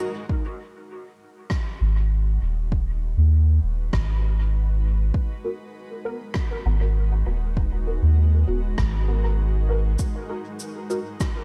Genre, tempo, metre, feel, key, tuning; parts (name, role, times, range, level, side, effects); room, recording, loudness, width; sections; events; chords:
ambient dub; 99 BPM; 4/4; straight; G# minor; A4 = 440 Hz
granular cloud pad; sustained chords; 0.0-11.4 s; G#3 to B4; -41 LUFS; equal; built-in reverb
filtered dub chord stab; stabs; 0.0-0.1, 5.4-11.0 s; B3 to A#4; -35 LUFS; equal; phaser, ensemble chorus, dub echo
electronic kick drum; drums; 0.3-11.3 s; -28 LUFS; equal; overdrive, small room ambience
rim click and cabasa; drums; 1.5-11.3 s; -40 LUFS; equal; small room ambience, dub echo
soft dub sub bass; bass; 1.8-10.0 s; D#1 to D#2; -22 LUFS; equal
small room ambience; dark, warm production; -23 LUFS; mono
0.3-11.4 A section
fade-in on ambient pad 0.3-11.4
0.3 G#m7; 10.0 D#m